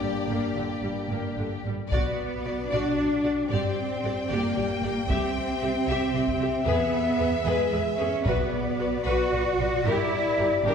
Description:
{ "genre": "cinematic, epic orchestral film score", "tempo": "75 BPM (dotted quarters)", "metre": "6/8", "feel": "straight", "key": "unclear", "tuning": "A4 = 440 Hz", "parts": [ { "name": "rich symphonic violin section", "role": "melody", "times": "0.0-10.7 s", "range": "D5 to G5", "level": "-34 LUFS", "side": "left 4 dB", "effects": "none" }, { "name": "rich studio violin section", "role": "second line", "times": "0.0-10.7 s", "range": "G4 to E5", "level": "-32 LUFS", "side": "left 5 dB", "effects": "none" }, { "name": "rich symphonic viola section", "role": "accompaniment", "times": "0.0-10.7 s", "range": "D3 to G#4", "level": "-34 LUFS", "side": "right 1 dB", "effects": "none" }, { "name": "dark French horn section", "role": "sustained chords", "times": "0.0-10.7 s", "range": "Bb3 to E5", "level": "-31 LUFS", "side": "left 3 dB", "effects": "none" }, { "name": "clear symphonic cello section", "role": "bass", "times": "0.0-10.7 s", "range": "G2 to F#4", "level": "-29 LUFS", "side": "right 2 dB", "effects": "none" }, { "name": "rich symphonic double bass section", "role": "bass", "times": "0.0-10.7 s", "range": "G1 to E2", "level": "-32 LUFS", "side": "right 2 dB", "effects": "none" }, { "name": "taiko ensemble", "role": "drums", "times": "1.9-9.3 s", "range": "none", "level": "-32 LUFS", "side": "equal", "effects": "none" }, { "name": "timpani", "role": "percussion", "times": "8.3-9.0 s", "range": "B2", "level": "-36 LUFS", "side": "left 3 dB", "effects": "none" } ], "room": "wet scoring stage reverb, RT60 1.9 s", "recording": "heard from further back in the room", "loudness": "-24 LUFS", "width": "side -7 dB against mid", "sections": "0.0-1.9 A section; 1.9-10.7 B section", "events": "build-up 0.0-1.9", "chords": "0.0 Gm; 1.9 Bm; 3.5 Gm; 5.1 C; 6.7 E; 8.3 Bm; 9.9 Gm" }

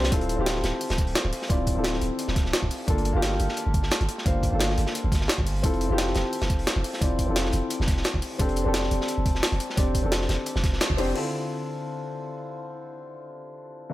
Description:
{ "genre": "liquid drum and bass", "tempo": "174 BPM", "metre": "4/4", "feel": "swing 53% on 16ths", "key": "D minor", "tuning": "A4 = 439 Hz", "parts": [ { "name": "dark grand piano", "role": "accompaniment", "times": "0.0-13.9 s", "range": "G2 to D5", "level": "-28 LUFS", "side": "left 2 dB", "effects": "low-pass filter, digital delay" }, { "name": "long sustained 808-style bass", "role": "bass", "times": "0.0-11.1 s", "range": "D1 to C2", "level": "-27 LUFS", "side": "equal", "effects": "none" }, { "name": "crunchy breakbeat drum kit", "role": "drums", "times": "0.0-11.1 s", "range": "hi-hat, snare drum", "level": "-32 LUFS", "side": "equal", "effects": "high-pass filter on hats, high-pass filter on snare, high-pass filter on room" }, { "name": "electronic kick drum", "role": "drums", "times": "0.1-11.0 s", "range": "none", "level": "-25 LUFS", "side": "equal", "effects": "overdrive" }, { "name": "jungle sampler-style drum kit", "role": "drums", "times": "0.1-11.2 s", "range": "crash cymbal, hi-hat, snare drum", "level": "-29 LUFS", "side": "equal", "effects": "none" } ], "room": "light reverb, small room ambience", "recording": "none", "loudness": "-23 LUFS", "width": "side -16 dB against mid", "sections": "0.0-11.2 A section; 11.2-13.9 B section", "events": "band accent 10.8", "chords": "0.1 Dm9; 2.9 Gm9; 5.6 Dm9/F; 8.4 F69; 11.2 Dm9" }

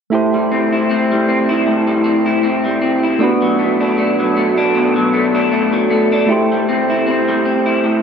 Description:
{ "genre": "indie pop", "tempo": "78 BPM", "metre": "4/4", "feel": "swing 55% on 16ths", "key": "A dorian", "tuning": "A4 = 439 Hz", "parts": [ { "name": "electric guitar through a small old amp", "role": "accompaniment", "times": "0.1-8.0 s", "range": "A2 to E4", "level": "-14 LUFS", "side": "left 2 dB", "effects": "lush chorus, vibrato effect" }, { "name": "soft electric-piano-like synth keys", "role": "accompaniment", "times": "0.1-8.0 s", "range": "A3 to C5", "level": "-18 LUFS", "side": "right 3 dB", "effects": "chorus, cassette tape" } ], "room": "wet church reverb, RT60 2.7 s", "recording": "dreamy mix soaked in reverb", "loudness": "-13 LUFS", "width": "side -6 dB against mid", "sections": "0.1-8.0 A section", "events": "none", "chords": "0.1 Am7; 3.2 Bm7; 6.3 Am7" }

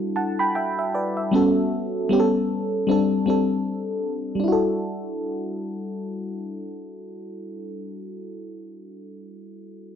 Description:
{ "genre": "R&B", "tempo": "77 BPM", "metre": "4/4", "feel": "swing 59% on 16ths", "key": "E minor", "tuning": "A4 = 440 Hz", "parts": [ { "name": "mellow FM electric piano", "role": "accompaniment", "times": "0.0-10.0 s", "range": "G3 to B5", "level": "-23 LUFS", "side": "left 1 dB", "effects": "chorus, phaser" } ], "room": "moderate studio reverb, RT60 0.7 s", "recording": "none", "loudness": "-21 LUFS", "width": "side -8 dB against mid", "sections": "0.0-4.4 A section; 4.4-7.6 B section", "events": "none", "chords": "0.0 Em11; 1.3 A13; 2.1 A9; 2.9 D7sus4; 4.4 Em11" }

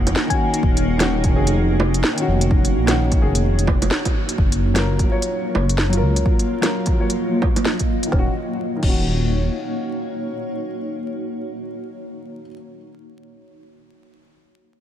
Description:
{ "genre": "future garage", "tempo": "128 BPM", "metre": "4/4", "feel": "swing 61% on 16ths", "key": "Eb minor", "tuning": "A4 = 441 Hz", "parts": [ { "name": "dark upright piano", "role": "accompaniment", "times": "0.0-12.5 s", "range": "Eb3 to Db5", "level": "-26 LUFS", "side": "left 2 dB", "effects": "sidechain pumping, low-pass filter, ping-pong delay" }, { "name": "granular cloud pad", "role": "sustained chords", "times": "0.0-11.8 s", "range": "Gb3 to Eb5", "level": "-25 LUFS", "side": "equal", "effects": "built-in reverb, sidechain pumping" }, { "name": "dark detuned saw bass", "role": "bass", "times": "0.0-9.5 s", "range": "Eb1 to Db2", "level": "-20 LUFS", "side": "equal", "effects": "sidechain pumping" }, { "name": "organic electronic drum kit", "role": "drums", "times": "0.1-9.0 s", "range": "bongos, crash cymbal, hi-hat, snare drum", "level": "-24 LUFS", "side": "right 1 dB", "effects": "none" }, { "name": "thumb-piano-like synth pluck", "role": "melody", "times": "0.3-0.6 s", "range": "Ab5", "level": "-29 LUFS", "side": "left 4 dB", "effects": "chorus, dub echo" }, { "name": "electronic kick drum", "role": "drums", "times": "0.3-9.0 s", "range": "none", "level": "-19 LUFS", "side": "equal", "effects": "none" } ], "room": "light reverb, digital ambience", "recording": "vinyl crackle", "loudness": "-17 LUFS", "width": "side -11 dB against mid", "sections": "0.0-4.4 A section; 4.4-8.1 B section; 8.1-11.9 C section", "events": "band accent 3.9", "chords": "0.0 Ebm7; 4.4 Gbmaj7; 8.1 Ebm7" }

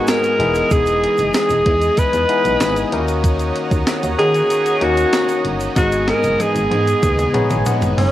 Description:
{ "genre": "1980s-style pop", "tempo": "95 BPM", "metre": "4/4", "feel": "straight", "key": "G# minor", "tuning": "A4 = 437 Hz", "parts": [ { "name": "raspy alto saxophone", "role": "melody", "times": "0.0-8.1 s", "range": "C#4 to B4", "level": "-17 LUFS", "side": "equal", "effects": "cassette tape" }, { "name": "barky tine electric piano", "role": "accompaniment", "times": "0.0-8.1 s", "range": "G#2 to B5", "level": "-22 LUFS", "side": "left 4 dB", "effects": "cassette tape" }, { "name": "distorted electric guitar", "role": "accompaniment", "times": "0.0-8.1 s", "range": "G#2 to E4", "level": "-33 LUFS", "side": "right 5 dB", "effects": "overdrive, ensemble chorus, cassette tape" }, { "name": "brassy analog pad", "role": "sustained chords", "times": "0.0-8.1 s", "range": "B3 to D#6", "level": "-25 LUFS", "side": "right 1 dB", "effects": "chorus, cassette tape" }, { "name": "clean 12-bit digital drum machine", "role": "drums", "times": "0.1-8.1 s", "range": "hi-hat, kick drum, snare drum, tambourine, toms", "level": "-20 LUFS", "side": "right 1 dB", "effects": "none" }, { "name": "egg shaker", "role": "percussion", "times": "0.1-8.0 s", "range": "none", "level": "-39 LUFS", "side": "right 8 dB", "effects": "none" }, { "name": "solid FM bass", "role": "bass", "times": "0.4-8.1 s", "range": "E1 to D#3", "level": "-23 LUFS", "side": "equal", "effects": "none" } ], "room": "moderate studio reverb, RT60 0.5 s", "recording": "home recording on cassette", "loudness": "-14 LUFS", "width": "side -13 dB against mid", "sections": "0.0-8.1 A section", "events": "drum fill 5.8-8.1; tine electric piano fill 7.0-8.1", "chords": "0.4 Emaj7; 2.9 D#m7; 5.8 G#m" }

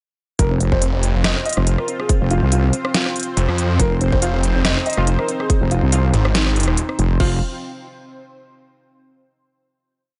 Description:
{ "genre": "heavy wobble dubstep", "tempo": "141 BPM", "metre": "4/4", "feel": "swing 54% on 16ths, half-time", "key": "F minor", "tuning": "A4 = 442 Hz", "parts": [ { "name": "dark grand piano", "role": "melody", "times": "0.4-7.4 s", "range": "C4 to Eb5", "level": "-27 LUFS", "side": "equal", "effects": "digital delay" }, { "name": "lush unison pad", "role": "sustained chords", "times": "1.1-7.4 s", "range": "C4 to C5", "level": "-31 LUFS", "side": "equal", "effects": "chorus, phaser, sidechain pumping" }, { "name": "wobble bass", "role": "bass", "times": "0.4-7.4 s", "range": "F1 to C2", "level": "-19 LUFS", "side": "equal", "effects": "chorus, overdrive" }, { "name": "dubstep drum kit", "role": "drums", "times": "0.4-7.3 s", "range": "crash cymbal, hi-hat, rim click, snare drum", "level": "-24 LUFS", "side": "equal", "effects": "none" }, { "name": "electronic kick drum", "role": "drums", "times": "0.4-7.3 s", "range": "none", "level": "-22 LUFS", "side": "equal", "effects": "none" }, { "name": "snarling distorted saw bass", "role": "bass", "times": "0.7-6.8 s", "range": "F1 to F2", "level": "-21 LUFS", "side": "equal", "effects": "distortion, overdrive" }, { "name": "orchestra-hit-like synth stab", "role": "stabs", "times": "4.2-7.4 s", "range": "F3 to F4", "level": "-32 LUFS", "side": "equal", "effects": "built-in reverb, digital delay" } ], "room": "digital ambience", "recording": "nothing above 10.8 kHz", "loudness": "-18 LUFS", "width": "mono", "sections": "0.4-7.2 drop; 7.2-8.9 final chord", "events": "drop 0.4-7.2", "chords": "0.4 F5" }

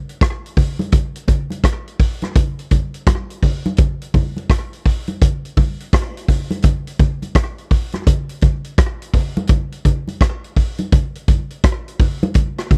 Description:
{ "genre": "reggae", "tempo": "84 BPM", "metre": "4/4", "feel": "swing 64% on 16ths", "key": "none", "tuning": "none", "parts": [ { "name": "vintage drum kit", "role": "drums", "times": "0.1-12.8 s", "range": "hi-hat, kick drum, rim click", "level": "-17 LUFS", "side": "equal", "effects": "none" }, { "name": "congas", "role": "percussion", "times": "0.6-12.8 s", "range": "none", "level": "-24 LUFS", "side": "equal", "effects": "none" } ], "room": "little or no reverb", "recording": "dry, close 1970s-style studio recording", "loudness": "-18 LUFS", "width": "mono", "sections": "0.0-12.8 A section", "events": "none", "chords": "none" }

